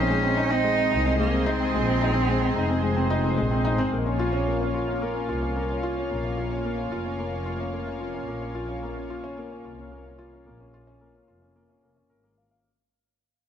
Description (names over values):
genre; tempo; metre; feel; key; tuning
piano and strings electronica; 110 BPM; 4/4; straight; Bb minor; A4 = 441 Hz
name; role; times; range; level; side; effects
rich cello; melody; 0.0-3.4 s; Bb3 to Eb4; -26 LUFS; right 3 dB; ping-pong delay
lush unison pad; sustained chords; 0.0-12.6 s; Bb3 to C6; -33 LUFS; equal; chorus
felt-muted upright piano; riff; 0.0-12.7 s; Ab3 to F5; -27 LUFS; left 1 dB; ping-pong delay
warm studio double bass section; bass; 0.0-12.6 s; F1 to C2; -29 LUFS; equal; none
room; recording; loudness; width
light reverb; none; -23 LUFS; side -9 dB against mid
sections
0.0-3.9 A section; 3.9-12.6 B section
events
drop 0.0-3.9; fade-out 3.9-12.6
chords
0.0 Ab/Bb; 3.9 Bbm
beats
0.10 0.65 1.19 | 1.74 2.28 2.83 3.37 | 3.92 4.46 5.01 5.55 | 6.10 6.64 7.19 7.74 | 8.28 8.83 9.37 9.92 | 10.46 11.01 11.55 12.10